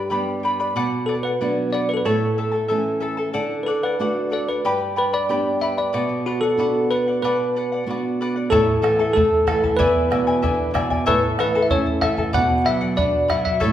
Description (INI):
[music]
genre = andean folk, Andean ensemble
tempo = 93 BPM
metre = 2/4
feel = straight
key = B minor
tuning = A4 = 439 Hz
[part]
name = bell-like tine electric piano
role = melody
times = 0.0-13.7 s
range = F#4 to F#5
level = -21 LUFS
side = equal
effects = medium stereo tremolo
[part]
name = charango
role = accompaniment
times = 0.0-13.7 s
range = E4 to B5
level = -24 LUFS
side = left 2 dB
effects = none
[part]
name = flamenco guitar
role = accompaniment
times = 0.0-13.7 s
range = E2 to G4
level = -24 LUFS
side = right 2 dB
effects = none
[part]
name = bombo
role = percussion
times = 8.5-13.7 s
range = none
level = -25 LUFS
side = equal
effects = none
[sound]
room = wet recital hall reverb, RT60 1.4 s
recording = recorded in a church or concert hall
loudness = -18 LUFS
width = side -11 dB against mid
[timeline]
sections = 0.0-8.5 A section; 8.5-13.7 B section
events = none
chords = 0.0 G; 0.8 Bm; 2.1 A; 3.4 D; 4.7 G; 5.9 Bm; 8.5 A; 9.8 E7; 11.1 A; 12.3 Bm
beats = 0.11 | 0.76 1.41 | 2.06 2.71 | 3.36 4.01 | 4.65 5.30 | 5.94 6.59 | 7.23 7.87 | 8.52 9.16 | 9.80 10.44 | 11.07 11.71 | 12.35 12.99 | 13.62